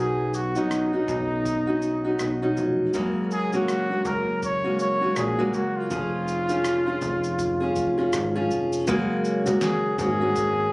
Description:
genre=acoustic pop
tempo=81 BPM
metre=4/4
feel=swing 60% on 16ths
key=F# major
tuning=A4 = 441 Hz
part: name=breathy trumpet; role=melody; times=0.0-10.7 s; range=D#4 to C#5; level=-26 LUFS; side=equal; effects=none
part: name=fingerpicked steel-string acoustic guitar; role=accompaniment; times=0.0-10.7 s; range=F#2 to G#4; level=-24 LUFS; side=equal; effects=none
part: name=plucky analog bass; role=bass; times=0.0-10.7 s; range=E#1 to B1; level=-30 LUFS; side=equal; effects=none
part: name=dusty soul sampler-style drum kit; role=drums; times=0.3-10.6 s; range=kick drum, rim click, shaker, snare drum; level=-34 LUFS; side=equal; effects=none
room=moderate studio reverb, RT60 0.8 s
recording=recorded on a phone in the room, club reverb, compression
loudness=-22 LUFS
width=side -24 dB against mid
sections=0.0-8.9 A section; 8.9-10.7 B section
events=none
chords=0.0 Badd9; 2.9 F#add9; 5.9 C#/E#; 8.9 F#add9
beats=0.71 1.46 2.20 | 2.94 3.68 4.43 5.17 | 5.91 6.65 7.39 8.13 | 8.88 9.62 10.36

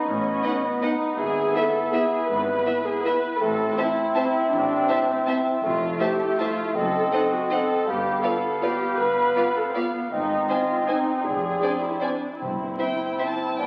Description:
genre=classical, orchestral ballroom waltz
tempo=145-175 BPM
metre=3/4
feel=rubato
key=A minor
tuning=A4 = 435 Hz
part: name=dark clarinet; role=second line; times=0.0-13.7 s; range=C5 to F5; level=-31 LUFS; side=equal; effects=none
part: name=warm bassoon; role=accompaniment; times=0.0-13.7 s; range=A3 to C4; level=-30 LUFS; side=equal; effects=none
part: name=warm studio viola section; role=accompaniment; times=0.0-13.7 s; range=B3 to B4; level=-28 LUFS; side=equal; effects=none
part: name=clear studio cello section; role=bass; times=0.1-13.7 s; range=F2 to A2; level=-40 LUFS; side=equal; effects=none
part: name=clear studio double bass section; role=bass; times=0.1-13.7 s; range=F1 to A1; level=-40 LUFS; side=equal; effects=none
part: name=rich studio violin section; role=second line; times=0.4-13.3 s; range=B4 to E5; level=-34 LUFS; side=equal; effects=none
part: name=mellow French horn section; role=sustained chords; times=0.4-13.3 s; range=A3 to F4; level=-33 LUFS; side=equal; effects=none
part: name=rich studio violin section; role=melody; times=0.5-13.7 s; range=E5 to A5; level=-38 LUFS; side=equal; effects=none
part: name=timpani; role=percussion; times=12.4-13.0 s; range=G2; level=-39 LUFS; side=equal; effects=none
room=wet scoring stage reverb, RT60 1.9 s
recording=very old 78 rpm record, vinyl crackle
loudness=-24 LUFS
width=mono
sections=0.0-13.7 A section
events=none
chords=0.0 B7/A; 1.2 E/G#; 3.4 Am; 5.6 Fmaj7; 6.8 F#dim7; 7.9 G7; 10.1 Ab; 11.3 Dm7b5/F; 12.4 C/G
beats=| 0.07 0.44 0.81 | 1.18 1.55 1.93 | 2.29 2.66 3.05 | 3.41 3.77 4.15 | 4.52 4.89 5.28 | 5.63 6.00 6.39 | 6.75 7.12 7.50 | 7.87 8.24 8.62 | 8.99 9.36 9.75 | 10.12 10.49 10.88 | 11.25 11.63 12.03 | 12.40 12.80 13.20 | 13.59

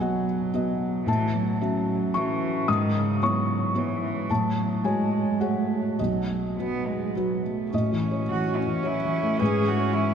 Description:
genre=neoclassical piano and strings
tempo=101-114 BPM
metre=3/4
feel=rubato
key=unclear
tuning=A4 = 440 Hz
part: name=warm cello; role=second line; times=0.0-10.1 s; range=C#3 to G#4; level=-28 LUFS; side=right 4 dB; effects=none
part: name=felt-muted upright piano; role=accompaniment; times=0.0-10.1 s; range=B1 to D#6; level=-24 LUFS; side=left 1 dB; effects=none
part: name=warm viola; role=accompaniment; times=7.7-10.1 s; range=C#4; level=-30 LUFS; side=equal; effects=none
room=wet cathedral reverb, RT60 5.8 s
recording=recorded in a church or concert hall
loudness=-23 LUFS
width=side -7 dB against mid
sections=0.0-7.7 A section; 7.7-10.1 B section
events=none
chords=0.0 B; 1.1 A6; 2.7 C#m7/G#; 4.3 F#madd9/A; 6.0 B; 7.7 A6; 9.4 C#m7/G#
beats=0.00 0.53 | 1.07 1.60 2.14 | 2.67 3.21 3.74 | 4.29 4.84 5.40 | 5.98 6.57 7.15 | 7.72 8.28 8.84 | 9.40 9.95

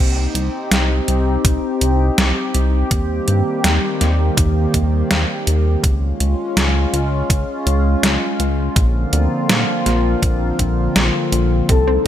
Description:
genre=synthwave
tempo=82 BPM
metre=4/4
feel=straight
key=unclear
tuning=A4 = 440 Hz
part: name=chorused pulse-width pad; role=sustained chords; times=0.0-12.1 s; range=D3 to G4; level=-20 LUFS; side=equal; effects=sidechain pumping
part: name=chorused synth bass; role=bass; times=0.0-12.0 s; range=Bb1 to G2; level=-17 LUFS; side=equal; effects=none
part: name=detuned 8-bit digital drum machine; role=drums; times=0.4-11.8 s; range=hi-hat, snare drum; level=-20 LUFS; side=equal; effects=gated reverb
part: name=electronic kick drum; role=drums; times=1.4-11.8 s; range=none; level=-18 LUFS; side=equal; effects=none
part: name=expressive synth lead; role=melody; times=11.7-12.1 s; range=A4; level=-16 LUFS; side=left 4 dB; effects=wide subtle chorus
part: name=analog pluck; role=arpeggios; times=11.7-12.0 s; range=C3 to C4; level=-28 LUFS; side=right 3 dB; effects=chorus, tape echo
room=light reverb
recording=none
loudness=-15 LUFS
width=side -11 dB against mid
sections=0.0-12.1 A section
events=none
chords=0.0 Cm; 2.9 Eb6; 5.8 Db; 8.8 Bbadd9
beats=0.71 1.45 2.18 | 2.91 3.64 4.37 5.10 | 5.84 6.57 7.30 8.03 | 8.76 9.49 10.23 10.96 | 11.69

